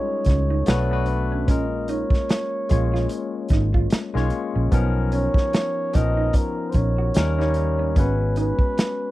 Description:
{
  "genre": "R&B, neo-soul",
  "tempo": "74 BPM",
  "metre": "4/4",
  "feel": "swing 57% on 16ths",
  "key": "unclear",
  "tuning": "A4 = 439 Hz",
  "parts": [
    { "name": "trumpet with bucket mute", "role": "melody", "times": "0.0-9.1 s", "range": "A#4 to D#5", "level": "-27 LUFS", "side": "right 2 dB", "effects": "none" },
    { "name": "barky tine electric piano", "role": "accompaniment", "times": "0.0-9.1 s", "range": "E#3 to C#5", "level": "-27 LUFS", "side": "left 6 dB", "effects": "none" },
    { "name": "crunchy breakbeat drum kit", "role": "drums", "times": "0.2-9.0 s", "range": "hi-hat, kick drum, snare drum", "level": "-21 LUFS", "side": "equal", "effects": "none" },
    { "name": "electric guitar through a small old amp", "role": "second line", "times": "0.3-8.8 s", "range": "B3 to F#4", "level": "-30 LUFS", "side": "right 6 dB", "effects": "none" },
    { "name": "vintage muted fingered electric bass", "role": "bass", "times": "0.3-8.5 s", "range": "G#1 to D#2", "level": "-22 LUFS", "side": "equal", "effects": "none" }
  ],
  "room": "little or no reverb",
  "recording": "dry, close 1970s-style studio recording",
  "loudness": "-19 LUFS",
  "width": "side -16 dB against mid",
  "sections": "0.0-9.1 A section",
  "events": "none",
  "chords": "0.0 D#9sus4; 0.7 Bm7; 1.5 A#m7; 4.7 Bmaj9#11; 7.2 D#7; 8.0 G#m7",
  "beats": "0.67 | 1.48 2.29 3.10 3.91 | 4.72 5.53 6.34 7.15 | 7.96 8.77"
}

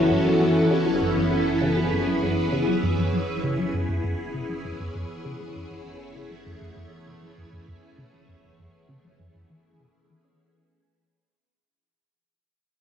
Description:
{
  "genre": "ambient, sequencer-driven space music",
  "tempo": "99 BPM",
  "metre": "4/4",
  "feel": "straight",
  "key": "unclear",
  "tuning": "A4 = 440 Hz",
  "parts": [
    { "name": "phased string machine", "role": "sustained chords", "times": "0.0-10.4 s", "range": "E3 to A4", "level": "-25 LUFS", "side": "left 1 dB", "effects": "ensemble chorus, phaser, cassette tape" },
    { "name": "vibraphone with soft mallets", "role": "arpeggios", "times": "0.0-0.7 s", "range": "E4 to E5", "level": "-27 LUFS", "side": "left 1 dB", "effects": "auto-pan, cassette tape, analog delay, plate reverb" },
    { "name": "fat analog bass", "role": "bass", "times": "0.0-10.4 s", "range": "F#1", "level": "-40 LUFS", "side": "equal", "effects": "tube saturation" },
    { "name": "bubbling stepped-filter texture", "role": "texture", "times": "0.0-10.4 s", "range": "A3 to B4", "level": "-33 LUFS", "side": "equal", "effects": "chorus, built-in reverb, cassette tape, plate reverb" },
    { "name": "resonant blip pluck", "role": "riff", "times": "0.1-10.3 s", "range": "F#2 to C#4", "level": "-28 LUFS", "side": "right 1 dB", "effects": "phaser, lush chorus, cassette tape, analog delay" }
  ],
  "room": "wet booth ambience, RT60 0.2 s",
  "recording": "home recording on cassette",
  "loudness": "-21 LUFS",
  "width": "side -8 dB against mid",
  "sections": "0.0-10.4 A section",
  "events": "fade-out on analog synth bass 0.0-10.4; fade-out 0.0-10.4; filter sweep on synth arpeggio sound 0.0-10.4",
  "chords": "0.0 F#m7",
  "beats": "0.10 | 0.70 1.31 1.92 2.52 | 3.13 3.73 4.34 4.95 | 5.55 6.16 6.76 7.37 | 7.98 8.58 9.19 9.79"
}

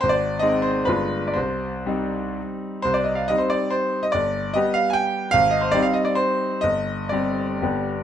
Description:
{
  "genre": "classical, romantic triple-time dance for piano with dotted rhythms",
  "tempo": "115-164 BPM",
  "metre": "3/4",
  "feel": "rubato",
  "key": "C minor",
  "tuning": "A4 = 438 Hz",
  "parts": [
    { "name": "bright grand piano", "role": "solo", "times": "0.0-8.0 s", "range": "G1 to Ab5", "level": "-20 LUFS", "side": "equal", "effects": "none" }
  ],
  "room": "light reverb",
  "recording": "close, detailed microphones",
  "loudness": "-20 LUFS",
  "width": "side -10 dB against mid",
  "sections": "0.0-2.9 A section; 2.9-8.0 A section",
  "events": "none",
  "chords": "0.0 Ab; 0.9 G7b9; 1.4 Cm; 4.1 G; 5.3 Abmaj7; 6.6 Gsus4",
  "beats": "| 0.03 0.43 0.88 | 1.36 1.87 2.37 | 2.85 3.29 3.73 | 4.14 4.55 4.96 | 5.34 5.75 6.19 | 6.64 7.12 7.62"
}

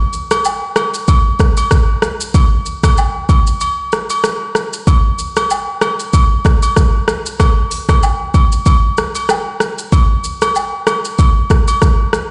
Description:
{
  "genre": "afrobeats",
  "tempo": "95 BPM",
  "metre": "4/4",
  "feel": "swing 55% on 16ths",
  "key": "none",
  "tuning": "none",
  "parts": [
    { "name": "afro-pop drum kit", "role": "drums", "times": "0.1-12.3 s", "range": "hi-hat, kick drum, rim click, shaker", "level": "-15 LUFS", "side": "equal", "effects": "none" },
    { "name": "agogo bells and woodblock", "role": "percussion", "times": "0.3-11.8 s", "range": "none", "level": "-21 LUFS", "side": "equal", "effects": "none" }
  ],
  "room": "light reverb",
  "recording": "played on a big sound system in a bare room, stone room reverb, nothing above 10.4 kHz",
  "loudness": "-14 LUFS",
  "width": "mono",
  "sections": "0.0-12.3 A section",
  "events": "none",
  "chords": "none",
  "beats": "0.45 1.08 1.71 | 2.34 2.98 3.61 4.24 | 4.87 5.50 6.13 6.76 | 7.40 8.03 8.66 9.29 | 9.92 10.55 11.19 11.82"
}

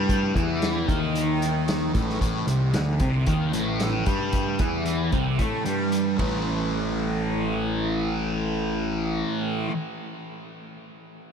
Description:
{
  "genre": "psychedelic rock",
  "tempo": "113 BPM",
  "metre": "4/4",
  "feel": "straight",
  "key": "unclear",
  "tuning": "A4 = 440 Hz",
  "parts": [
    { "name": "thick fuzz guitar", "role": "riff", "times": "0.0-9.7 s", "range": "A2 to A3", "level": "-25 LUFS", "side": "equal", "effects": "distortion, phaser" },
    { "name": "fuzz picked electric bass", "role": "bass", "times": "0.0-9.2 s", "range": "A1 to A2", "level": "-28 LUFS", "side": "equal", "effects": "overdrive" },
    { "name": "vintage drum kit", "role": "drums", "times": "0.1-6.3 s", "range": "hi-hat, kick drum, ride cymbal, snare drum", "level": "-29 LUFS", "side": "equal", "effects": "none" }
  ],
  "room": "moderate huge ambient reverb, RT60 7.3 s",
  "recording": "dreamy mix soaked in reverb",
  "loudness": "-22 LUFS",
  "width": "side -7 dB against mid",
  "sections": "0.0-6.5 A section; 6.5-10.7 B section",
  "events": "none",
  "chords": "0.0 A5",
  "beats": "| 0.09 0.61 1.15 1.67 | 2.20 2.73 3.27 3.80 | 4.33 4.86 5.39 5.92 | 6.45 6.99 7.52 8.05 | 8.58 9.12 9.65"
}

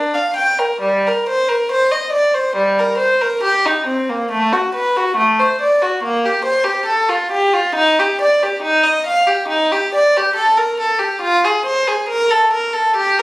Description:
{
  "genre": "classical, baroque-style suite movement for unaccompanied violin",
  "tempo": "69 BPM",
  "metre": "4/4",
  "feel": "rubato",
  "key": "unclear",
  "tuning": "A4 = 442 Hz",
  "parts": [
    { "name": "warm violin", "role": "solo", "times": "0.0-13.2 s", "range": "G3 to G5", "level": "-13 LUFS", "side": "equal", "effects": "none" }
  ],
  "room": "moderate stone room reverb, RT60 1.0 s",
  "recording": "recorded on a phone in the room, club reverb",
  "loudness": "-13 LUFS",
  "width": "side -20 dB against mid",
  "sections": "0.0-13.2 A section",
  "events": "none",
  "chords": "none",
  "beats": "| 0.84 1.73 2.59 3.44 | 4.30 5.17 6.03 6.89 | 7.77 8.65 9.51 10.37 | 11.24 12.11 12.97"
}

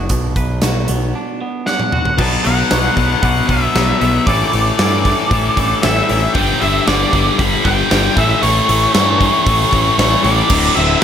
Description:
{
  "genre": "quiet-loud alternative rock",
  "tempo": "115 BPM",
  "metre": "4/4",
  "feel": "straight",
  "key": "unclear",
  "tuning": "A4 = 438 Hz",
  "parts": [
    { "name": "twangy electric guitar", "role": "arpeggios", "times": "0.0-6.3 s", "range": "A2 to B4", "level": "-23 LUFS", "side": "right 3 dB", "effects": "phaser" },
    { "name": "growling picked electric bass", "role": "bass", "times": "0.0-10.9 s", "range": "D1 to G2", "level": "-18 LUFS", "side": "equal", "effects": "overdrive" },
    { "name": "big rock drum kit", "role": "drums", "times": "0.1-11.0 s", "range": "crash cymbal, hi-hat, kick drum, snare drum, toms", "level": "-18 LUFS", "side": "right 1 dB", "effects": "none" },
    { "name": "octave-fuzz lead guitar", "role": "melody", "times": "1.7-11.0 s", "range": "C#5 to B5", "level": "-17 LUFS", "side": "right 1 dB", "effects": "distortion" },
    { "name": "tight distorted guitar", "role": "riff", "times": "2.2-11.0 s", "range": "D2 to B3", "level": "-18 LUFS", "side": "left 13 dB", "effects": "distortion" },
    { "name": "scooped high-gain guitar", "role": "riff", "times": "6.4-11.0 s", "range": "D2 to A3", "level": "-19 LUFS", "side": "right 12 dB", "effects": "distortion" }
  ],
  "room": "light reverb",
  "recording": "none",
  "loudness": "-12 LUFS",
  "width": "side -8 dB against mid",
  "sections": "0.0-2.2 A section; 2.2-10.5 B section",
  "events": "drum fill 1.7-2.2",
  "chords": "0.0 Bm; 4.3 A7sus4; 6.4 G5; 8.2 A; 10.5 D5",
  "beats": "| 0.10 0.62 1.14 1.67 | 2.19 2.71 3.23 3.75 | 4.27 4.79 5.31 5.83 | 6.35 6.87 7.39 7.91 | 8.43 8.95 9.47 9.99 | 10.50 11.02"
}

